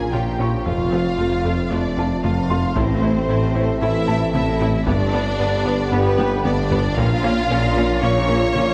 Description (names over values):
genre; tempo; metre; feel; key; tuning
cinematic, hybrid orchestral and electronic film score; 114 BPM; 4/4; straight; unclear; A4 = 440 Hz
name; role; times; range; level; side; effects
warm symphonic violin section; melody; 0.0-8.7 s; B4 to Db6; -30 LUFS; equal; none
rich symphonic violin section; second line; 0.0-8.7 s; B3 to Db5; -30 LUFS; equal; none
dark French horn section; sustained chords; 0.0-8.7 s; B3 to A4; -28 LUFS; equal; none
dark trombone section; sustained chords; 0.0-8.7 s; Bb2 to B3; -32 LUFS; equal; none
warbly tape-like pad; sustained chords; 0.0-8.7 s; D3 to Db5; -32 LUFS; equal; none
soft round pluck; arpeggios; 0.0-8.7 s; F3 to Bb4; -34 LUFS; equal; none
rubbery square bass; riff; 0.0-8.7 s; F2 to Bb3; -28 LUFS; equal; none
mellow tuba; bass; 0.0-8.7 s; F1 to Bb1; -29 LUFS; equal; none
punchy sub bass; bass; 0.0-8.7 s; F1 to Bb1; -33 LUFS; equal; none
rich chamber cello section; bass; 0.0-8.7 s; F2 to Bb2; -30 LUFS; equal; none
rich symphonic double bass section; bass; 0.0-8.7 s; F1 to Bb1; -30 LUFS; equal; none
impact; sound effects; 0.0-0.7 s; none; barely audible; none; none
felt-muted upright piano; texture; 0.0-8.7 s; Bb4 to Db6; -35 LUFS; equal; tape echo
clear symphonic viola section; accompaniment; 0.1-8.6 s; A3 to F4; -30 LUFS; equal; none
taiko ensemble; drums; 0.1-8.7 s; none; -31 LUFS; equal; none
room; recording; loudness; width
wet scoring stage reverb, RT60 1.9 s; worn, warbling old tape, cassette tape, warbly pitch drift; -19 LUFS; mono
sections
0.0-8.7 A section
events
impact 0.0-0.7; drum fill 6.2-7.0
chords
0.0 Bbm; 0.7 F; 2.8 Am; 4.9 G; 7.0 Bbm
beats
0.14 | 0.66 1.19 1.71 2.24 | 2.77 3.29 3.82 4.35 | 4.87 5.40 5.92 6.45 | 6.98 7.50 8.03 8.56